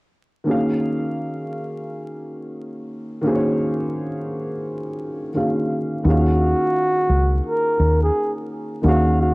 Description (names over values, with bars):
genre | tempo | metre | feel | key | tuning
hip hop | 86 BPM | 4/4 | swing 62% on 16ths | Eb minor | A4 = 436 Hz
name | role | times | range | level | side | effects
dark upright piano | accompaniment | 0.4-9.3 s | Eb3 to F5 | -22 LUFS | equal | cassette tape
deep dub fingered electric bass | bass | 6.0-9.3 s | Db2 to Eb2 | -17 LUFS | equal | transformer saturation
trumpet with bucket mute | melody | 6.1-9.3 s | Gb4 to Bb4 | -20 LUFS | equal | cassette tape
room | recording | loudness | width
moderate spring reverb, RT60 1.4 s, small room ambience | home recording on cassette, vinyl crackle | -18 LUFS | side -25 dB against mid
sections
0.5-6.0 A section; 6.0-9.3 B section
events
none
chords
0.5 Ebm11